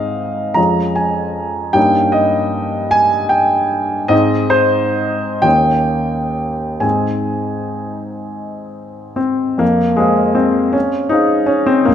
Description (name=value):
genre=classical, romantic character piece for solo piano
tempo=41-54 BPM (dotted quarters)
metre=6/8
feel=rubato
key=Ab major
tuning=A4 = 440 Hz
part: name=warm grand piano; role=solo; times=0.0-11.9 s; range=Db2 to Bb5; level=-13 LUFS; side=equal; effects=none
room=moderate recital hall reverb, RT60 1.7 s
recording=none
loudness=-13 LUFS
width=side -9 dB against mid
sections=0.0-9.6 A section; 9.6-11.9 B section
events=none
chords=0.0 Ab; 0.6 Db/F; 1.8 Eb7/G; 4.1 Ab; 5.4 Eb7; 6.8 Ab; 9.6 Fm